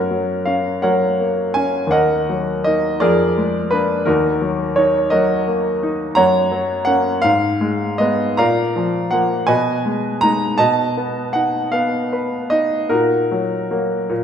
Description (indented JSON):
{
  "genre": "classical, romantic character piece for solo piano",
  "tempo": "50-58 BPM (dotted quarters)",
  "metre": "6/8",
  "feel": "rubato",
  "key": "Eb minor from 6.2 s",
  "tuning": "A4 = 440 Hz",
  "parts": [
    { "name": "clear grand piano", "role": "solo", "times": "0.0-14.2 s", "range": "D#2 to Bb5", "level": "-15 LUFS", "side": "equal", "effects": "none" }
  ],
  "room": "wet recital hall reverb, RT60 1.6 s",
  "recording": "minimal, uncompressed stereo recording",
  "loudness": "-15 LUFS",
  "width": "side -8 dB against mid",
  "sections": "0.0-14.2 A section",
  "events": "none",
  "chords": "0.0 F#; 1.9 D#m; 3.0 A#7/E#; 4.1 D#m; 6.2 Gb; 7.2 Abm; 8.4 Bb; 9.5 Abm/Cb; 10.6 B7; 12.9 Ebm/Bb",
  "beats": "0.83 | 1.92 3.02 | 4.07 5.12 | 6.17 7.25 | 8.40 9.51 | 10.61 11.74 | 12.91 14.11"
}